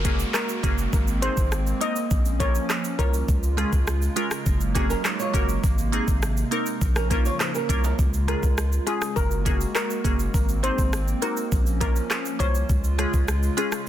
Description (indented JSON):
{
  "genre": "dancehall",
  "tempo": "102 BPM",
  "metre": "4/4",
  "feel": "straight",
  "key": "Db major",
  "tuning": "A4 = 440 Hz",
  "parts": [
    { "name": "steel pan", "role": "melody", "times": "0.0-3.1, 8.3-12.5 s", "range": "Ab4 to Eb5", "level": "-31 LUFS", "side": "left 3 dB", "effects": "tape echo" },
    { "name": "glassy wavetable pluck", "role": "accompaniment", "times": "0.0-13.7 s", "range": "Ab3 to Db5", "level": "-30 LUFS", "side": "equal", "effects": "chorus" },
    { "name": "hollow soft pad", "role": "sustained chords", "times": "0.0-13.9 s", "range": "C3 to Gb4", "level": "-32 LUFS", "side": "right 2 dB", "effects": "chorus, sidechain pumping" },
    { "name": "saturated sub bass", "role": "bass", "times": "0.0-13.5 s", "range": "Gb1 to Db2", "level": "-25 LUFS", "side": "equal", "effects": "none" },
    { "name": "island pop drum kit", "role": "drums", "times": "0.0-13.9 s", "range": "handclaps, hi-hat, kick drum, rim click, shaker", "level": "-24 LUFS", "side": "equal", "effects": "none" },
    { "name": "downlifter", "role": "sound effects", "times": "0.0-3.3 s", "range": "none", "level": "-38 LUFS", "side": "equal", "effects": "none" },
    { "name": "egg shaker and timbales", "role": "percussion", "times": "0.1-13.9 s", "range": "none", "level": "-42 LUFS", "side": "right 7 dB", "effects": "none" },
    { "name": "flamenco guitar", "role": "arpeggios", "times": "4.8-8.0 s", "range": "C4 to Db5", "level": "-29 LUFS", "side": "right 4 dB", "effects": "none" }
  ],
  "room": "digital ambience",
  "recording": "dense, heavily limited modern master",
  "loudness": "-21 LUFS",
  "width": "side -12 dB against mid",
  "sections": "0.0-13.9 A section",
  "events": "none",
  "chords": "0.0 Gbadd9; 0.9 Abadd9; 2.1 Bbm; 3.3 Db; 4.5 Gbadd9; 5.6 Abadd9; 6.8 Bbm; 8.0 Db; 9.2 Gbadd9; 10.3 Abadd9; 11.5 Bbm; 12.7 Db",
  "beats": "0.34 | 0.93 1.52 2.11 2.69 | 3.28 3.87 4.46 5.05 | 5.64 6.22 6.81 7.40 | 7.99 8.58 9.17 9.75 | 10.34 10.93 11.52 12.11 | 12.70 13.28 13.87"
}